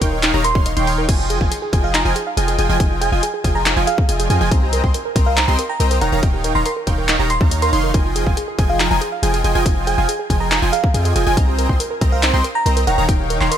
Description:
future bass; 140 BPM; 4/4; half-time; F minor; A4 = 440 Hz
soft round pluck; arpeggios; 0.0-13.6 s; Eb4 to G5; -26 LUFS; right 3 dB; chorus, sidechain pumping, tape echo
wide unison pluck; arpeggios; 0.0-13.5 s; G5 to C6; -29 LUFS; right 1 dB; sidechain pumping, tape echo
big bright polysynth; riff; 0.0-13.5 s; Eb3 to C6; -21 LUFS; right 1 dB; chorus, sidechain pumping, tape echo
warm 808-style bass; bass; 0.0-13.5 s; Eb1 to F2; -20 LUFS; equal; sidechain pumping
big-room dance drum kit; drums; 0.0-13.6 s; crash cymbal, handclaps, hi-hat; -23 LUFS; left 1 dB; studio reverb
electronic kick drum; drums; 0.0-13.2 s; -17 LUFS; equal; studio reverb
bell-like FM electric piano; melody; 0.4-13.6 s; F5 to C6; -24 LUFS; right 2 dB; chorus, phaser, sidechain pumping, tape echo
little or no reverb; -15 LUFS; side -9 dB against mid
0.0-1.1 A section; 1.1-13.6 A section
drop 0.0-1.1, 1.1-13.6
0.0 Eb7; 1.1 Fm7; 4.5 Cm7; 6.0 Eb7; 7.9 Fm7; 11.4 Cm7; 12.9 Eb7

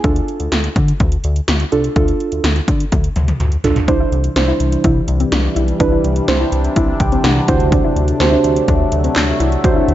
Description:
synth-pop; 125 BPM; 4/4; straight; A4 = 440 Hz
muted felt-like synth keys; accompaniment; 0.0-9.9 s; D4 to G5; -19 LUFS; right 4 dB; chorus
chorused synth bass; bass; 0.0-9.9 s; B1 to D3; -17 LUFS; equal
80s electronic pad drums; drums; 0.0-9.9 s; handclaps, hi-hat, kick drum, snare drum, toms; -18 LUFS; equal; gated reverb on snare and toms
sweeping resonant pad; sustained chords; 3.9-9.9 s; C3 to D4; -20 LUFS; left 1 dB; chorus, phaser
soft round pluck; arpeggios; 3.9-9.9 s; C4 to E4; -22 LUFS; left 3 dB; chorus, digital delay
light reverb, digital ambience; nothing above 7.6 kHz; -13 LUFS; side -13 dB against mid
0.0-3.9 A section; 3.9-9.9 B section
drum fill 2.9-3.9; synth keys fill 6.8-7.7
0.0 Dm; 3.9 Cadd9; 7.5 D7

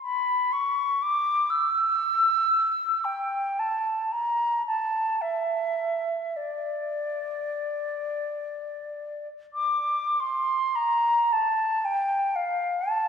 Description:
classical, free, expressive piece for unaccompanied flute; 26-41 BPM (dotted quarters); 6/8; rubato; D minor; A4 = 443 Hz
mellow concert flute; solo; 0.0-13.1 s; D5 to E6; -24 LUFS; equal
wet church reverb, RT60 2.5 s; heard from further back in the room; -23 LUFS; side -7 dB against mid
0.0-10.2 A section; 10.2-13.1 B section

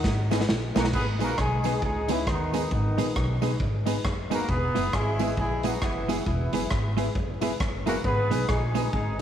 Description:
ska; 135 BPM; 4/4; swing 60% on 8ths; G# minor; A4 = 443 Hz
mellow horn section; melody; 0.0-9.2 s; D#3 to B4; -30 LUFS; equal; slapback echo
upright bass; bass; 0.0-9.2 s; E1 to D#2; -29 LUFS; equal
raw garage drum kit; drums; 0.0-9.2 s; crash cymbal, hi-hat, kick drum, rim click, snare drum; -30 LUFS; equal; slapback echo
clean electric guitar; accompaniment; 0.3-8.8 s; G#3 to G#4; -32 LUFS; right 8 dB
warm upright piano; stabs; 0.3-9.2 s; D#4 to B4; -33 LUFS; left 8 dB
tambourine; percussion; 0.3-8.8 s; -47 LUFS; right 11 dB
moderate echo chamber reverb, RT60 2.3 s; 1960s-style stereo with parts hard left and right, vinyl crackle; -23 LUFS; side -10 dB against mid
0.9-9.2 A section
drum fill 0.0-0.9
0.0 G#m; 4.5 E; 8.0 G#m

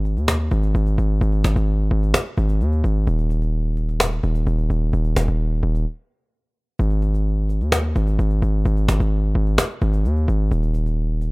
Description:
hip hop, trap; 129 BPM; 4/4; half-time; A4 = 439 Hz
hard-hitting 808-style bass; bass; 0.0-11.3 s; D#1 to D#2; -18 LUFS; equal
cajon; drums; 0.0-11.3 s; -22 LUFS; equal
small room ambience; rough home demo mix; -18 LUFS; side -28 dB against mid
0.0-11.3 A section
break 5.9-6.8

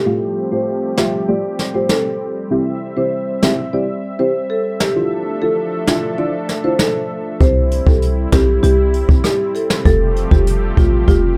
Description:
dancehall; 98 BPM; 4/4; straight; C major; A4 = 442 Hz
warm analog pad; sustained chords; 0.0-11.4 s; F3 to E5; -27 LUFS; equal; chorus, sidechain pumping, low-pass filter
deep mellow chord stab; accompaniment; 0.1-11.2 s; A3 to G4; -23 LUFS; equal; chorus, phaser, low-pass filter
marimba with medium mallets; melody; 0.5-11.4 s; F4 to E5; -22 LUFS; equal; low-pass filter
jazz brush drum kit; drums; 1.0-11.2 s; hi-hat, kick drum, rim click, snare drum; -18 LUFS; equal
short 808-style bass; bass; 7.4-11.4 s; F1 to C2; -18 LUFS; equal
light reverb; -17 LUFS; mono
0.0-7.4 A section; 7.4-11.4 B section
filter sweep 0.0-7.4
0.1 Fadd9; 2.5 C; 5.0 Dmadd9; 7.4 C; 9.9 Fadd9

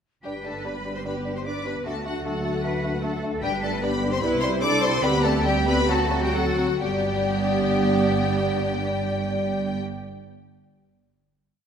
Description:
classical, dramatic, fast romantic movement for symphony orchestra; 125-155 BPM; 4/4; rubato; G major; A4 = 438 Hz
clear symphonic violin section; melody; 0.2-9.8 s; F#5 to D6; -30 LUFS; left 5 dB
large flute ensemble; second line; 0.2-9.8 s; F#4 to D5; -32 LUFS; left 3 dB
warm symphonic violin section; second line; 0.2-9.8 s; F#4 to D5; -31 LUFS; left 3 dB
warm bassoon; accompaniment; 0.2-9.8 s; F#3 to A3; -32 LUFS; right 2 dB
warm symphonic viola section; accompaniment; 0.2-9.8 s; F#3 to E4; -33 LUFS; right 3 dB
dark French horn section; sustained chords; 0.2-9.8 s; F#3 to D4; -29 LUFS; left 1 dB
rich symphonic cello section; bass; 0.2-9.8 s; G2 to B4; -31 LUFS; right 3 dB
warm symphonic double bass section; bass; 0.2-9.8 s; G1 to D2; -30 LUFS; right 4 dB
dark clarinet; second line; 0.3-9.8 s; B3 to E4; -33 LUFS; left 2 dB
wet scoring stage reverb, RT60 1.6 s; -21 LUFS; side -7 dB against mid
0.2-6.8 A section; 6.8-10.5 final chord
slowing down 2.6-6.8
0.2 G; 1.9 D; 3.4 G; 4.2 C; 5.0 D7sus4; 5.9 D7; 6.8 G

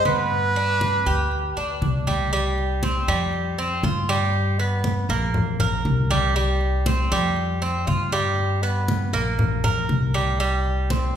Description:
latin, Cuban son and guajira; 119 BPM; 4/4; straight; A4 = 438 Hz
breathy trumpet; melody; 0.0-1.8 s; B4; -22 LUFS; right 2 dB
Cuban tres; arpeggios; 0.0-11.2 s; G3 to Bb4; -24 LUFS; right 2 dB
upright bass; bass; 0.0-11.1 s; Bb1 to G2; -24 LUFS; equal
congas; percussion; 0.1-11.2 s; -27 LUFS; left 1 dB
wet recital hall reverb, RT60 1.5 s; recorded in a church or concert hall; -20 LUFS; side -9 dB against mid
0.0-2.3 A section; 2.3-11.2 B section
0.3 G; 2.3 C5; 3.3 Fsus2; 4.3 G; 5.4 Bbsus2; 6.4 C5; 7.4 Fsus2; 8.4 G; 9.4 Bbsus2; 10.4 C5

